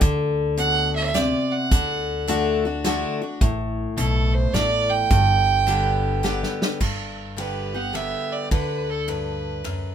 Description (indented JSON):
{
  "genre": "honky-tonk and classic country",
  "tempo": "106 BPM",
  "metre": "3/4",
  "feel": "swing 66% on 8ths",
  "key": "G major",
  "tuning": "A4 = 440 Hz",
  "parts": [
    { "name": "picked steel-string acoustic guitar", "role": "accompaniment", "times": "0.0-9.9 s", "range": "F#2 to G4", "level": "-24 LUFS", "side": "left 2 dB", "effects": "none" },
    { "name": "upright bass", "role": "bass", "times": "0.0-9.8 s", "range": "G1 to D2", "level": "-28 LUFS", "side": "equal", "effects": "none" },
    { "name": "natural country drum kit", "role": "drums", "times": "0.0-9.8 s", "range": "crash cymbal, hi-hat, kick drum, ride cymbal, rim click, snare drum", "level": "-23 LUFS", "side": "equal", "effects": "none" },
    { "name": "rich fiddle", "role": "melody", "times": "0.6-9.9 s", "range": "A4 to G5", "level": "-23 LUFS", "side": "right 6 dB", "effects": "none" }
  ],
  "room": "light reverb",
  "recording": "minimal, uncompressed stereo recording",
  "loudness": "-20 LUFS",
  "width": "side -8 dB against mid",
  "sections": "0.0-6.8 A section; 6.8-9.9 B section",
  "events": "drum fill 6.2-6.8",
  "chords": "0.0 G (rootless); 1.7 D; 5.1 G",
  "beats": "| 0.01 0.58 1.15 | 1.71 2.28 2.84 | 3.41 3.98 4.54 | 5.11 5.67 6.24 | 6.81 7.38 7.94 | 8.51 9.08 9.65"
}